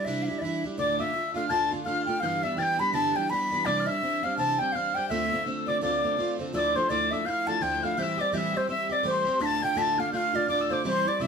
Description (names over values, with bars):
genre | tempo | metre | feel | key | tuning
celtic folk | 167 BPM | 4/4 | swing 60% on 8ths | D dorian | A4 = 441 Hz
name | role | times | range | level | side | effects
bright baroque flute | melody | 0.0-11.3 s | C5 to B5 | -28 LUFS | equal | none
picked plugged-in twelve-string acoustic guitar | accompaniment | 0.0-11.3 s | D2 to G4 | -30 LUFS | right 2 dB | none
reedy wooden whistle | second line | 0.8-11.3 s | C6 to B6 | -30 LUFS | left 2 dB | none
room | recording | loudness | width
wet studio reverb, RT60 0.6 s | band playing live in one room | -24 LUFS | side -6 dB against mid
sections
0.0-6.5 A section; 6.5-11.3 B section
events
none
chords
0.0 Cadd9; 0.8 Dm; 2.2 G6; 3.7 Cadd9; 5.1 Dm7; 6.5 Dmadd9; 8.0 Am7; 9.4 Dm